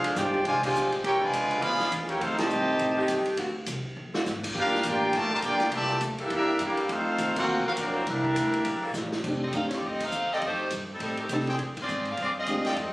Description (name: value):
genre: jazz, big band swing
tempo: 205 BPM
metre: 4/4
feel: swing 60% on 8ths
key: F mixolydian from 9.2 s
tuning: A4 = 440 Hz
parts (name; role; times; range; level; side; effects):
- clear trumpet section; melody; 0.0-8.9 s; Bb3 to B5; -26 LUFS; equal; none
- clear trombone section; second line; 0.0-8.9 s; Bb2 to G4; -30 LUFS; equal; none
- upright bass; bass; 0.0-12.9 s; F1 to C3; -37 LUFS; equal; none
- swinging big-band drum kit; drums; 0.0-12.9 s; crash cymbal, hi-hat, kick drum, ride cymbal, snare drum; -35 LUFS; equal; none
- edgy saxophone section; sustained chords; 0.6-8.9 s; D3 to C5; -33 LUFS; equal; none
- clear concert grand piano; accompaniment; 9.3-12.6 s; Ab3 to G4; -31 LUFS; equal; none
- clear saxophone section; melody; 9.4-12.9 s; Eb3 to F5; -29 LUFS; equal; none
- clear trumpet section; stabs; 10.3-12.7 s; Ab4 to G5; -33 LUFS; equal; none
room: moderate recital hall reverb, RT60 1.6 s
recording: recorded on a phone in the room, club reverb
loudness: -25 LUFS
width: side -20 dB against mid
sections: 0.0-9.2 A section; 9.2-12.9 B section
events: band accent 0.6, 2.4, 7.3, 10.0, 11.7; drum fill 4.0, 9.0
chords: 0.0 Bb13; 1.0 Bdim7; 2.2 F13; 3.4 Daug7; 4.6 Gm7; 5.7 C13; 6.9 F7; 7.5 D7alt; 8.1 C13; 9.2 F13; 11.6 Bb13